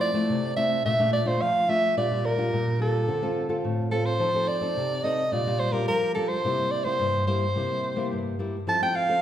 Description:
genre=samba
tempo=107 BPM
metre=4/4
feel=straight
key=F major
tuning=A4 = 440 Hz
part: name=warm soprano saxophone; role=melody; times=0.0-9.2 s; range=A4 to A5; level=-25 LUFS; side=right 1 dB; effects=none
part: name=nylon-string guitar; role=accompaniment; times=0.0-9.2 s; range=G2 to A4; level=-27 LUFS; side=left 1 dB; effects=none
room=wet recital hall reverb, RT60 1.3 s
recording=recorded in a church or concert hall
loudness=-23 LUFS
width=side -10 dB against mid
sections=0.0-9.2 A section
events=none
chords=0.0 Fmaj7; 0.8 Bbmaj7; 2.0 Gm7/Bb; 3.1 Dm7; 4.2 F7; 5.3 Bb6; 6.4 C7; 8.7 Fmaj7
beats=0.28 0.84 1.40 | 1.96 2.52 3.08 3.64 | 4.20 4.76 5.32 5.88 | 6.44 7.00 7.56 8.12 | 8.68

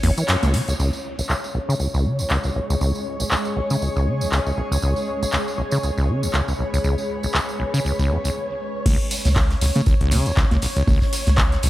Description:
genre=acid house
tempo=119 BPM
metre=4/4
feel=swing 56% on 16ths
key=unclear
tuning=A4 = 440 Hz
part: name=string machine, full ensemble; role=sustained chords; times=0.0-11.7 s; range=C#5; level=-29 LUFS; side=left 1 dB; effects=ensemble chorus, sidechain pumping
part: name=acid bass, saw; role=riff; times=0.0-11.7 s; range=B1 to E3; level=-22 LUFS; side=equal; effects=tube saturation, cassette tape
part: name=warm sub bass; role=bass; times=0.0-0.1, 8.9-11.7 s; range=G#1 to C#2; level=-20 LUFS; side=equal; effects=sidechain pumping
part: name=booming analog drum machine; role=drums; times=0.0-11.7 s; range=congas, crash cymbal, handclaps, hi-hat, ride cymbal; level=-25 LUFS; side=equal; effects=low-pass filter on cymbals, low-pass filter on perc, low-pass filter on hats, low-pass filter on snare, low-pass filter on room
part: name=modern studio drum kit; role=drums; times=0.0-0.8, 8.9-11.7 s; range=hi-hat, snare drum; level=-36 LUFS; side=right 2 dB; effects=sidechain pumping on hats, high-pass filter on hats, high-pass filter on snare, high-pass filter on room
part: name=tambourine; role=percussion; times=0.2-11.7 s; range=none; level=-33 LUFS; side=right 2 dB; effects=none
part: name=granular cloud pad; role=texture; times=1.5-11.7 s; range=G#3 to C#6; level=-31 LUFS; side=equal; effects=built-in reverb, sidechain pumping
part: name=electronic kick drum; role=drums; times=8.9-11.5 s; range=none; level=-20 LUFS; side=equal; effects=none
room=light reverb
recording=none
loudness=-19 LUFS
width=side -15 dB against mid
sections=0.8-8.9 A section; 8.9-11.7 B section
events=band accent 0.3; filter sweep on acid bass 0.8-8.9; filter sweep on string machine 0.8-8.9; break 8.4-8.9; drop 8.9-11.7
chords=0.0 C#5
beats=0.29 | 0.79 1.29 1.80 2.30 | 2.81 3.31 3.82 4.32 | 4.83 5.33 5.83 6.34 | 6.84 7.35 7.85 8.35 | 8.86 9.36 9.87 10.37 | 10.88 11.38

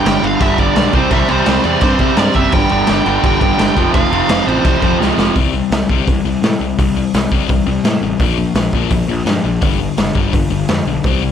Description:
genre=punk rock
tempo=169 BPM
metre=4/4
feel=straight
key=unclear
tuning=A4 = 440 Hz
part: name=dark smooth lead guitar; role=melody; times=0.0-5.0 s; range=C5 to G5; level=-19 LUFS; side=right 3 dB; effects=overdrive
part: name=distorted electric guitar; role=riff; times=0.0-5.4 s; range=F2 to C4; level=-17 LUFS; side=right 14 dB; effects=distortion
part: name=sludgy distorted guitar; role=riff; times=0.0-11.3 s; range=F2 to C4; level=-18 LUFS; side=left 12 dB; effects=overdrive
part: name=fuzz picked electric bass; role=bass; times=0.1-11.3 s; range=F1 to C3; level=-20 LUFS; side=equal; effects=overdrive
part: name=raw garage drum kit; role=drums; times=0.1-11.1 s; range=crash cymbal, hi-hat, kick drum, snare drum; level=-16 LUFS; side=equal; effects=none
room=studio ambience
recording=none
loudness=-12 LUFS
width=side -8 dB against mid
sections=0.0-5.4 A section; 5.4-11.3 B section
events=drum fill 5.0-5.4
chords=0.0 G5; 0.9 C; 2.5 G5; 3.8 F5; 5.4 C5; 8.2 Bb5; 9.6 G5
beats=0.06 0.42 0.77 | 1.12 1.48 1.83 2.18 | 2.54 2.89 3.24 3.60 | 3.95 4.30 4.66 5.01 | 5.37 5.72 6.08 6.43 | 6.79 7.14 7.50 7.85 | 8.21 8.56 8.91 9.27 | 9.62 9.98 10.34 10.69 | 11.05

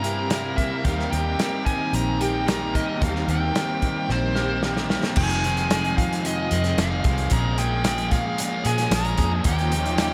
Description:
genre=rock, shoegaze and dream pop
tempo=112 BPM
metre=4/4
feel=straight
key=F minor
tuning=A4 = 445 Hz
part: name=nasal lead guitar with a parked wah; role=melody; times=0.0-10.1 s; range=C5 to Bb5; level=-30 LUFS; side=equal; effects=overdrive, analog delay
part: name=picked twelve-string acoustic guitar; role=arpeggios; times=0.0-10.1 s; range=Eb3 to G4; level=-37 LUFS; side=equal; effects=none
part: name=electric guitar at the edge of break-up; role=riff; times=0.0-10.1 s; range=F2 to Bb4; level=-31 LUFS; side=equal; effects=reverse reverb
part: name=thick fuzz guitar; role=riff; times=0.0-10.1 s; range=F2 to Eb4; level=-32 LUFS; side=equal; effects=distortion, lush chorus
part: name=vintage muted fingered electric bass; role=bass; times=0.0-10.1 s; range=F1 to Bb2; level=-29 LUFS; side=equal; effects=none
part: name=loose indie drum kit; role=drums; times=0.0-10.1 s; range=crash cymbal, hi-hat, kick drum, snare drum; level=-28 LUFS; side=equal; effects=none
part: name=string machine, cellos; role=sustained chords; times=9.5-10.1 s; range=F4 to F5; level=-35 LUFS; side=equal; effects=ensemble chorus
room=wet cathedral reverb, RT60 4.9 s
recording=dreamy mix soaked in reverb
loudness=-23 LUFS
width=mono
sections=0.0-5.2 A section; 5.2-10.1 B section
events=drum fill 4.1-5.2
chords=0.0 C7; 0.8 Eb6; 5.2 Fm7; 7.3 Bbm7; 9.5 Eb9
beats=0.30 | 0.85 1.39 1.93 2.47 | 3.01 3.55 4.09 4.63 | 5.17 5.70 6.24 6.78 | 7.31 7.85 8.38 8.92 | 9.45 9.99

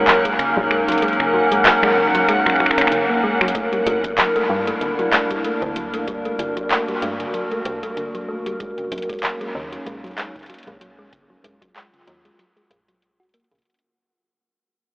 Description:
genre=IDM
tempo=95 BPM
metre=4/4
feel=swing 56% on 16ths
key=unclear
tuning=A4 = 440 Hz
part: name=warbly tape-like pad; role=sustained chords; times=0.0-13.6 s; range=Gb3 to Bb4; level=-20 LUFS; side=equal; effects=chorus, built-in reverb
part: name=thumb-piano-like synth pluck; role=arpeggios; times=0.0-13.6 s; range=Gb2 to Gb4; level=-28 LUFS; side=equal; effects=chorus, vintage 12-bit sampler grit, analog delay
part: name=metallic FM bass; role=bass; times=0.0-13.6 s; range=D1 to G2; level=-30 LUFS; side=equal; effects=none
part: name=backwards swelling texture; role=texture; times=0.0-3.6 s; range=F#5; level=-26 LUFS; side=equal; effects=built-in reverb, lush chorus, sidechain pumping
part: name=electro analog drum machine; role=drums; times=0.1-13.8 s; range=congas, finger snaps, handclaps, hi-hat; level=-21 LUFS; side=equal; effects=analog delay
part: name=electronic kick drum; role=drums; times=0.3-11.7 s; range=none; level=-42 LUFS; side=equal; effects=none
room=wet huge ambient reverb, RT60 5.3 s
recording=dreamy mix soaked in reverb, telephone sound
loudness=-17 LUFS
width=side -24 dB against mid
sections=0.0-3.5 A section; 3.5-13.7 B section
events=fade-out 3.5-13.7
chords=0.0 Ebm7; 3.5 Gm6; 8.6 Ebm7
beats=0.39 | 1.02 1.65 2.29 2.92 | 3.55 4.18 4.81 5.44 | 6.08 6.71 7.34 7.97 | 8.60 9.23 9.86 10.50 | 11.13 11.76 12.39 13.02

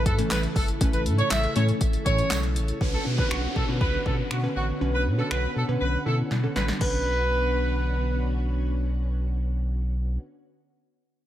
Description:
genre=dance-pop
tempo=120 BPM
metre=4/4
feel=straight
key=B minor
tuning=A4 = 440 Hz
part: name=glassy wavetable pluck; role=accompaniment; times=0.0-10.2 s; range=D3 to B4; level=-31 LUFS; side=equal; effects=chorus, sidechain pumping
part: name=ensemble organ-string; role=sustained chords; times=0.0-10.2 s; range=C#3 to A4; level=-34 LUFS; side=equal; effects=ensemble chorus, sidechain pumping
part: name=warm sub bass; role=bass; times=0.0-10.2 s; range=G1 to B2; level=-26 LUFS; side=equal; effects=sidechain pumping
part: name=warm horn section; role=melody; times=0.1-8.3 s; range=F#4 to E5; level=-29 LUFS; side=right 1 dB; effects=digital delay
part: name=deep house drum kit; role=drums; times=0.1-6.9 s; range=crash cymbal, finger snaps, handclaps, hi-hat, kick drum, snare drum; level=-27 LUFS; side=equal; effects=overdrive
part: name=tambourine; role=percussion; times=0.3-2.4 s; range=none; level=-40 LUFS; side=right 8 dB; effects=none
part: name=downlifter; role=sound effects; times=2.8-6.8 s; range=none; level=-35 LUFS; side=equal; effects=none
room=light reverb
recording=none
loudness=-23 LUFS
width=side -12 dB against mid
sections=0.0-2.8 A section; 2.8-6.8 B section; 6.8-10.8 C section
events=drop 0.0-2.8; drum fill 6.3-6.8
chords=0.0 A; 2.8 Bmadd9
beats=0.31 | 0.81 1.31 1.81 2.31 | 2.81 3.31 3.81 4.31 | 4.81 5.31 5.81 6.31 | 6.81 7.31 7.81 8.31 | 8.81 9.31 9.81

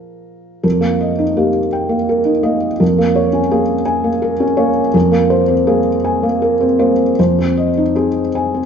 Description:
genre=neoclassical minimalist piano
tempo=55 BPM (dotted quarters)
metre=6/8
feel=uneven beats, rubato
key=unclear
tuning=A4 = 440 Hz
part: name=felt-muted upright piano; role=solo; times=0.0-8.7 s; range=F2 to Ab5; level=-12 LUFS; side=equal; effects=none
room=wet recital hall reverb, RT60 1.5 s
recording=recorded in a church or concert hall, nothing above 7.6 kHz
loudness=-12 LUFS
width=side -7 dB against mid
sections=0.6-8.7 A section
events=none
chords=0.0 Bb5; 0.6 Eb/F; 2.8 Bbm7/F; 4.9 Abadd9/F; 7.2 Fm7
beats=| 0.65 1.74 | 2.81 3.88 | 4.94 6.04 | 7.18 8.35

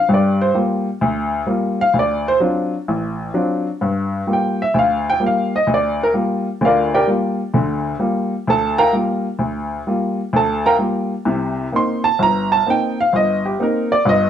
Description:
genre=jazz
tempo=129 BPM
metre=4/4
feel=swing 66% on 8ths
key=G minor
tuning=A4 = 439 Hz
part: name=warm upright piano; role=solo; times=0.0-14.3 s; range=G1 to C6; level=-16 LUFS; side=equal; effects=none
room=moderate studio reverb, RT60 0.9 s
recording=none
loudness=-16 LUFS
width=side -9 dB against mid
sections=0.0-3.8 A section; 3.8-14.3 A section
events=upright piano solo 0.0-14.3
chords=0.1 Gm7; 1.9 D7#9; 3.8 Gm7; 11.3 Cm7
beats=| 0.07 0.54 1.00 1.47 | 1.94 2.40 2.87 3.34 | 3.81 4.27 4.74 5.20 | 5.67 6.13 6.60 7.07 | 7.53 8.00 8.46 8.93 | 9.39 9.86 10.33 10.79 | 11.26 11.72 12.19 12.65 | 13.12 13.59 14.05

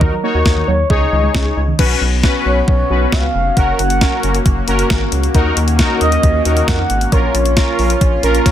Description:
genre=synth-pop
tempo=135 BPM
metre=4/4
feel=straight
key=Eb minor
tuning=A4 = 440 Hz
part: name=mellow horn-like synth lead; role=melody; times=0.0-8.5 s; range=Bb4 to Gb5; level=-19 LUFS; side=equal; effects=chorus, ping-pong delay
part: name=analog synth brass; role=accompaniment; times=0.0-8.5 s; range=C#4 to Db5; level=-20 LUFS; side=left 1 dB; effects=chorus
part: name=soft round pluck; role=arpeggios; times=0.0-1.8 s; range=Eb3 to Eb5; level=-24 LUFS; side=right 6 dB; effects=chorus, ping-pong delay
part: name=rubbery square bass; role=bass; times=0.0-8.5 s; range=F1 to F2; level=-17 LUFS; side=equal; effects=none
part: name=clean 12-bit digital drum machine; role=drums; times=0.0-8.5 s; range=crash cymbal, hi-hat, kick drum, snare drum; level=-16 LUFS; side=equal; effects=none
part: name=chorused pulse-width pad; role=sustained chords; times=1.8-8.5 s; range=Eb3 to F#4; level=-21 LUFS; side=equal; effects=none
room=light reverb, digital ambience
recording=dense, heavily limited modern master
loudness=-12 LUFS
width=side -11 dB against mid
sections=0.0-1.8 A section; 1.8-8.5 B section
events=none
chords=0.0 Ebm; 0.9 Dbsus2; 1.8 Bsus2; 3.6 Gb; 5.3 Ebm7; 7.1 Bbm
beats=| 0.01 0.46 0.90 1.35 | 1.79 2.23 2.68 3.12 | 3.57 4.01 4.46 4.90 | 5.35 5.79 6.24 6.68 | 7.12 7.57 8.01 8.46

